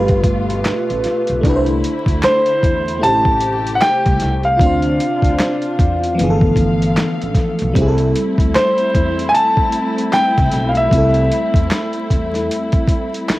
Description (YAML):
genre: R&B, neo-soul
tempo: 76 BPM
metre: 4/4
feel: swing 60% on 16ths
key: C major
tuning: A4 = 441 Hz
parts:
  - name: bright concert grand piano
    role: melody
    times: 0.0-13.1 s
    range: C5 to A5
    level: -17 LUFS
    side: equal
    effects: plate reverb
  - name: FM electric piano with soft pad layer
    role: accompaniment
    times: 0.0-13.4 s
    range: E3 to C5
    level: -19 LUFS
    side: equal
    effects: chorus, cassette tape
  - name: muted studio string section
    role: sustained chords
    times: 0.0-13.4 s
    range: B2 to F5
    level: -25 LUFS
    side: left 1 dB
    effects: cassette tape
  - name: upright bass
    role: bass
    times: 0.0-13.3 s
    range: G1 to E2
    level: -20 LUFS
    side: equal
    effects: none
  - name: dusty soul sampler-style drum kit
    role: drums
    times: 0.1-13.4 s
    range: handclaps, hi-hat, kick drum, snare drum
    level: -18 LUFS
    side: equal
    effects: none
room: light reverb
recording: home recording on cassette, vinyl crackle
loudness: -13 LUFS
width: side -17 dB against mid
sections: 0.0-13.4 A section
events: none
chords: 0.0 G9; 1.4 C69; 3.0 Am7; 4.6 Dm9; 6.2 G13; 7.8 C6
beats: 0.65 | 1.44 2.23 3.02 3.81 | 4.60 5.39 6.18 6.97 | 7.75 8.54 9.33 10.12 | 10.91 11.70 12.49 13.28